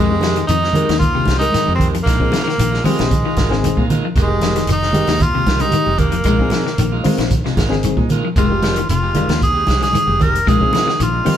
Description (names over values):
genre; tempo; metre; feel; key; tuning
afrobeat; 114 BPM; 4/4; straight; F minor; A4 = 440 Hz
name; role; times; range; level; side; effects
edgy tenor saxophone; melody; 0.0-11.4 s; Ab3 to Bb4; -19 LUFS; right 1 dB; none
clean electric guitar; arpeggios; 0.0-11.3 s; C3 to Ab3; -22 LUFS; left 7 dB; none
electric guitar at the edge of break-up; stabs; 0.0-11.4 s; Eb3 to G4; -25 LUFS; right 6 dB; none
fingered electric bass; bass; 0.0-11.3 s; F1 to Bb2; -21 LUFS; equal; none
overdriven reed electric piano; accompaniment; 0.1-11.4 s; Ab3 to Bb4; -24 LUFS; left 4 dB; fast tremolo
vintage drum kit; drums; 0.2-11.4 s; hi-hat, kick drum, snare drum; -20 LUFS; equal; none
congas; percussion; 0.2-11.4 s; none; -22 LUFS; right 2 dB; none
shekere; percussion; 0.2-11.4 s; none; -24 LUFS; right 2 dB; none
room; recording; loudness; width
moderate stone room reverb, RT60 1.2 s; band playing live in one room; -13 LUFS; side -10 dB against mid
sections
0.0-11.4 A section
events
none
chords
0.0 Fm9; 2.1 Bb7sus4; 4.2 Fm9; 6.3 Bb7sus4; 8.4 Fm9; 10.5 Bb7sus4